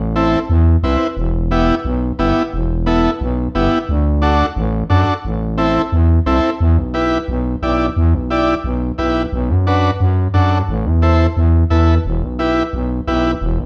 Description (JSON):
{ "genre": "latin, cumbia", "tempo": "176 BPM", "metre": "4/4", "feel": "straight", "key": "E minor", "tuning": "A4 = 440 Hz", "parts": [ { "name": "growling FM bass", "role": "bass", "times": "0.0-13.7 s", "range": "E1 to F#2", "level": "-18 LUFS", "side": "equal", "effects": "none" }, { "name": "combo organ", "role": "accompaniment", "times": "0.2-13.3 s", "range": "B3 to D5", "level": "-20 LUFS", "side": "equal", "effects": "none" } ], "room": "wet studio reverb, RT60 0.9 s", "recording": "heard from further back in the room", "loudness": "-16 LUFS", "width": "mono", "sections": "0.0-6.6 A section; 6.6-13.7 B section", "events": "none", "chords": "0.0 Am; 1.2 Em; 3.9 D; 5.2 Am; 6.6 Em; 9.3 Bm; 10.7 Am; 12.1 Em", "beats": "0.16 0.50 0.83 | 1.17 1.51 1.85 2.19 | 2.53 2.87 3.21 3.55 | 3.89 4.23 4.57 4.91 | 5.25 5.58 5.92 6.26 | 6.61 6.95 7.29 7.63 | 7.97 8.31 8.65 8.99 | 9.33 9.67 10.01 10.35 | 10.69 11.03 11.37 11.71 | 12.05 12.39 12.73 13.07 | 13.41" }